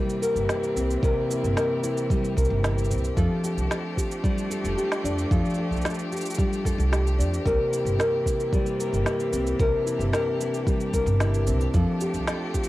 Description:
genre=folktronica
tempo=112 BPM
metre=4/4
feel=straight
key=C mixolydian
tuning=A4 = 436 Hz
part: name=rich string quartet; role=sustained chords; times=0.0-12.7 s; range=E3 to G4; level=-33 LUFS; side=equal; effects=cassette tape
part: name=nylon-string guitar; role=arpeggios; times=0.0-12.7 s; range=C3 to Bb4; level=-25 LUFS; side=left 1 dB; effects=cassette tape, tape echo
part: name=electronic cabasa and snare drum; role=drums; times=0.1-12.7 s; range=none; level=-32 LUFS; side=right 1 dB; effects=overdrive, small room ambience
part: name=upright bass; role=bass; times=0.4-12.2 s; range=F1 to F2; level=-26 LUFS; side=equal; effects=none
part: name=electronic kick drum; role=drums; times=1.0-12.7 s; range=none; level=-26 LUFS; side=equal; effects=overdrive, small room ambience
room=light reverb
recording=home recording on cassette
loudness=-22 LUFS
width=side -16 dB against mid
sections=0.0-12.7 A section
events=none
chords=0.0 C7; 3.2 F69; 7.5 C7; 11.7 F69

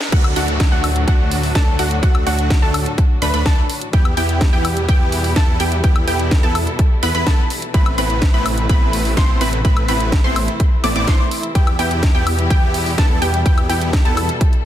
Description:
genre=EDM, festival progressive house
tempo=126 BPM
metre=4/4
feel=straight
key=E minor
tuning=A4 = 440 Hz
part: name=house drum kit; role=drums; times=0.0-14.6 s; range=crash cymbal, hi-hat, snare drum, woodblock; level=-24 LUFS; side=equal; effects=overdrive
part: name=riser and downlifter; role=sound effects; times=0.0-3.9 s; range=none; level=-29 LUFS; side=equal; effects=none
part: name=muted studio string section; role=sustained chords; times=0.1-14.7 s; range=A2 to B4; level=-27 LUFS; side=left 1 dB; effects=vintage 12-bit sampler grit, sidechain pumping
part: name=wide unison pluck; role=arpeggios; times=0.1-14.3 s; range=F#5 to D6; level=-24 LUFS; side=equal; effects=sidechain pumping, ping-pong delay
part: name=supersaw stab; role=riff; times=0.1-14.3 s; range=A3 to D5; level=-23 LUFS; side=right 1 dB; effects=sidechain pumping, ping-pong delay
part: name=detuned saw bass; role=bass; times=0.1-14.3 s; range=A1 to E2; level=-21 LUFS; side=equal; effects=sidechain pumping
part: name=electronic kick drum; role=drums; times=0.1-14.5 s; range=none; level=-15 LUFS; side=equal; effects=overdrive
room=little or no reverb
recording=dense, heavily limited modern master, high-pass filter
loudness=-14 LUFS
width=side -12 dB against mid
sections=0.1-14.7 A section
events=drop 0.1-14.7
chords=0.1 D; 3.9 Em; 7.7 Amadd9; 11.6 Em

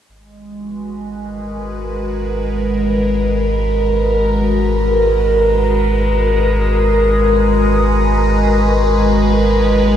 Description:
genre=ambient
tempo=free time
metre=none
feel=none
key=G# minor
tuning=A4 = 439 Hz
part: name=evolving wavetable pad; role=sustained chords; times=0.5-10.0 s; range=G#3 to B4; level=-15 LUFS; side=equal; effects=phaser, built-in reverb
part: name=warm sub bass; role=bass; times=0.1-10.0 s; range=G#1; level=-18 LUFS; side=equal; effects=none
room=wet shimmer reverb, RT60 6.6 s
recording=lossy compression artefacts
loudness=-12 LUFS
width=side -9 dB against mid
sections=0.1-10.0 A section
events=none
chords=0.1 G#m9

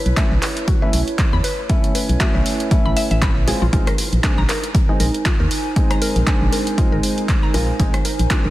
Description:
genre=deep house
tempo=118 BPM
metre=4/4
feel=swing 57% on 16ths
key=unclear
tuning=A4 = 440 Hz
part: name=warbly tape-like pad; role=texture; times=0.0-8.5 s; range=D#4 to A5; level=-27 LUFS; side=right 3 dB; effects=chorus, built-in reverb, sidechain pumping
part: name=organ-like FM bass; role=bass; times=0.1-8.5 s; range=G#1 to E2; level=-19 LUFS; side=equal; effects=sidechain pumping
part: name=deep house drum kit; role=drums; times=0.1-8.4 s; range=handclaps, hi-hat, rim click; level=-25 LUFS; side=equal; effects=overdrive, studio reverb
part: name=felt-muted upright piano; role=stabs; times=0.2-8.4 s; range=G#3 to E#4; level=-24 LUFS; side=equal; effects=sidechain pumping, tape echo
part: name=electronic kick drum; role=drums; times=0.2-8.4 s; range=none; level=-18 LUFS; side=equal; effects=overdrive, studio reverb
part: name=mallet-like synth pluck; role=arpeggios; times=0.4-8.5 s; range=E#4 to B5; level=-28 LUFS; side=left 3 dB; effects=chorus, sidechain pumping, tape echo
room=light reverb, digital ambience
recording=dense, heavily limited modern master, vinyl crackle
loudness=-15 LUFS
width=side -16 dB against mid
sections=0.0-8.5 A section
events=none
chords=0.0 B9sus4; 3.5 A#9sus4

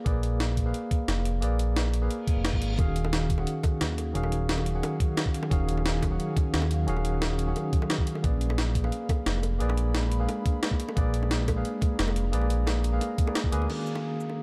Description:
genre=liquid drum and bass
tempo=176 BPM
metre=4/4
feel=straight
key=Eb minor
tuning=A4 = 440 Hz
part: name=tine electric piano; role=accompaniment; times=0.0-14.4 s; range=Eb3 to Ab5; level=-34 LUFS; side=equal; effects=medium tremolo, vintage 12-bit sampler grit, low-pass filter, digital delay
part: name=smooth gliding synth bass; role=bass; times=0.1-13.7 s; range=Eb1 to Eb2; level=-30 LUFS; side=equal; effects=tube saturation
part: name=breakbeat sampler-style drum kit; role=drums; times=0.1-14.3 s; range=crash cymbal, hi-hat, shaker, snare drum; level=-35 LUFS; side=equal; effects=none
part: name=electronic kick drum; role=drums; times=0.1-13.5 s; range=none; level=-28 LUFS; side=equal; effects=none
part: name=reverse cymbal and downlifter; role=sound effects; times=2.2-2.8, 13.7-14.4 s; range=none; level=-46 LUFS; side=equal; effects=none
part: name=ethereal airy pad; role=sustained chords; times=4.7-14.4 s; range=Gb3 to Cb6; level=-41 LUFS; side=equal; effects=none
part: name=bongos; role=percussion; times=2.8-14.4 s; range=none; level=-42 LUFS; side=equal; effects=none
room=light reverb, digital ambience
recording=dark, warm production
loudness=-27 LUFS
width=mono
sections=0.0-13.7 A section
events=reverse cymbal 2.2-2.8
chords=0.0 Bb7b9; 2.8 Ebm11; 8.2 Bb7b9; 13.7 Ebm11

